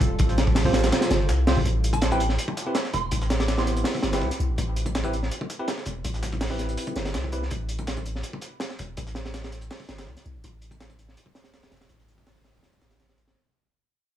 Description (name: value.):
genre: drum and bass, jungle.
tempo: 164 BPM.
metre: 4/4.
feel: straight.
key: A minor.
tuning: A4 = 440 Hz.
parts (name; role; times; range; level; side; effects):
warbly tape-like pad; sustained chords; 0.0-1.6 s; G3 to A4; -33 LUFS; right 2 dB; chorus, built-in reverb.
long sustained 808-style bass; bass; 0.0-13.3 s; E1 to C2; -26 LUFS; equal; tube saturation.
breakbeat sampler-style drum kit; drums; 0.0-13.3 s; hi-hat, snare drum, tambourine; -38 LUFS; equal; high-pass filter on perc, high-pass filter on hats, high-pass filter on snare.
crunchy breakbeat drum kit; drums; 0.0-13.4 s; hi-hat, kick drum, snare drum; -27 LUFS; equal; high-pass filter on kick, high-pass filter on hats, high-pass filter on snare, high-pass filter on room.
bell-like tine electric piano; stabs; 0.7-7.4 s; B3 to C5; -30 LUFS; equal; dub echo.
soft synth bell; melody; 1.9-4.1 s; G5 to D6; -33 LUFS; right 3 dB; chorus, phaser, dub echo.
room: studio reverb.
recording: dry, gritty hardware recording, vinyl crackle.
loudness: -23 LUFS.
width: side -11 dB against mid.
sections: 0.0-1.7 A section; 1.7-13.4 B section.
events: drop 0.0-1.7; fade-out 1.7-13.4.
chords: 0.0 Fsus2; 1.7 Am9; 7.5 N.C..